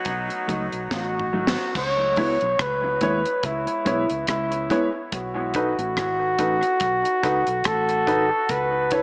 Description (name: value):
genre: dub reggae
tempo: 71 BPM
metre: 4/4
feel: swing 56% on 16ths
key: C# minor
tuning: A4 = 440 Hz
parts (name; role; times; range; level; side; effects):
- clear horn section; second line; 0.0-1.3 s; F#3 to F#4; -35 LUFS; equal; dub echo
- vintage muted fingered electric bass; bass; 0.1-9.0 s; G#1 to D#2; -36 LUFS; equal; none
- deep reggae drum kit; drums; 0.1-9.0 s; crash cymbal, hi-hat, kick drum, rim click, snare drum, toms; -31 LUFS; equal; none
- mellow electric guitar; accompaniment; 0.5-4.9 s; F#3 to E4; -34 LUFS; equal; lush chorus, dub echo
- warm flugelhorn; melody; 0.9-9.0 s; E4 to C#5; -25 LUFS; equal; dub echo
- warm upright piano; stabs; 2.2-9.0 s; D#4 to C#5; -30 LUFS; equal; dub echo
room: moderate plate reverb, RT60 2.2 s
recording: echo-heavy mix, small speaker sound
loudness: -23 LUFS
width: mono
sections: 0.0-1.8 A section; 1.8-9.0 B section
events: drum fill 0.9-1.8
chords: 0.0 B7; 1.8 C#m7; 5.1 B7; 8.5 C#m7